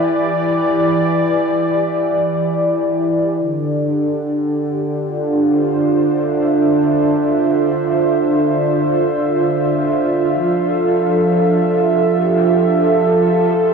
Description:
ambient; free time; D dorian; A4 = 442 Hz
warm analog pad; solo; 0.0-13.7 s; D3 to E5; -14 LUFS; right 1 dB; chorus, tremolo, analog delay
wet studio reverb, RT60 0.6 s; home recording on cassette, small room reverb; -14 LUFS; side -5 dB against mid
0.0-3.4 A section; 3.4-13.7 A section
0.0 Em7; 3.4 Dm7; 10.3 Fmaj7

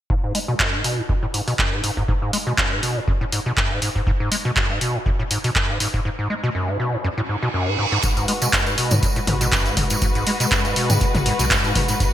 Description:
acid house; 121 BPM; 4/4; swing 54% on 16ths; G# minor; A4 = 439 Hz
acid bass, square; riff; 0.1-12.0 s; F#2 to G#3; -23 LUFS; equal; overdrive, lush chorus, sidechain pumping, ping-pong delay
electronic kick drum; drums; 0.1-12.1 s; -23 LUFS; equal
punchy analog drum machine; drums; 0.3-12.1 s; handclaps, hi-hat, toms; -22 LUFS; equal
reverse cymbal; sound effects; 7.3-8.0 s; -26 LUFS; right 5 dB
muted studio string section; sustained chords; 8.0-12.1 s; G#3 to B4; -25 LUFS; left 2 dB; sidechain pumping
warm sub bass; bass; 8.0-12.1 s; G#1 to G#2; -24 LUFS; equal; tube saturation, sidechain pumping
tambourine; percussion; 8.0-12.1 s; -28 LUFS; right 3 dB
moderate lush hall reverb, RT60 1.6 s, digital ambience; bright 1980s-style digital production; -18 LUFS; side -12 dB against mid
0.1-8.0 A section; 8.0-12.1 B section
filter sweep on acid bass 0.1-8.0, 8.0-12.1; reverse cymbal 7.3-8.0
0.1 G#m7

